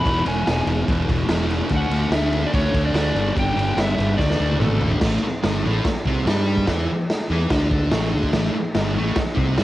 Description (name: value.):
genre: garage rock duo or trio.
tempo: 145 BPM.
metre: 4/4.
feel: straight.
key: unclear.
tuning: A4 = 443 Hz.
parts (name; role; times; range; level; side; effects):
overdriven slide guitar; melody; 0.0-4.9 s; A4 to B5; -26 LUFS; equal; cassette tape, tape echo.
thick fuzz guitar; riff; 0.0-9.6 s; E2 to G4; -24 LUFS; equal; distortion, cassette tape.
fuzz fingered electric bass; bass; 0.1-9.6 s; E1 to G2; -23 LUFS; equal; overdrive.
raw garage drum kit; drums; 0.1-9.6 s; crash cymbal, kick drum, ride cymbal, snare drum, toms; -23 LUFS; equal; cassette tape.
room: light reverb, small room ambience.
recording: home recording on cassette.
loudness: -18 LUFS.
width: side -15 dB against mid.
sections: 0.0-5.0 A section; 5.0-9.6 B section.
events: drum fill 4.2-5.0.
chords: 0.0 E; 1.7 D; 3.2 G5; 4.2 D5; 5.0 A5.